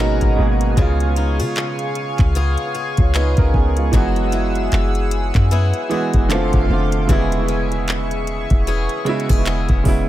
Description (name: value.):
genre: contemporary R&B.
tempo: 76 BPM.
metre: 4/4.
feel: swing 58% on 16ths.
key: unclear.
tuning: A4 = 440 Hz.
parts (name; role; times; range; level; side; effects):
clear baby grand piano; accompaniment; 0.0-10.1 s; B2 to C#5; -22 LUFS; right 4 dB; dub echo.
chorused pulse-width pad; sustained chords; 0.0-10.1 s; G#4 to E6; -27 LUFS; left 2 dB; none.
picked swing-style acoustic guitar; arpeggios; 0.0-10.1 s; C#3 to A#4; -26 LUFS; left 4 dB; dub echo.
clean 808-style bass; bass; 0.0-10.1 s; E1 to C#3; -19 LUFS; equal; none.
smooth R&B drum kit; drums; 0.2-10.1 s; handclaps, hi-hat, kick drum; -18 LUFS; equal; none.
room: little or no reverb.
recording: echo-heavy mix.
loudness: -15 LUFS.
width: side -14 dB against mid.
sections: 0.0-10.1 A section.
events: none.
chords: 0.0 G#m9; 0.8 C#7; 3.9 F#9sus4; 6.3 F6; 7.1 E6.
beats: | 0.77 1.56 2.35 3.14 | 3.93 4.72 5.51 6.30 | 7.09 7.88 8.67 9.46.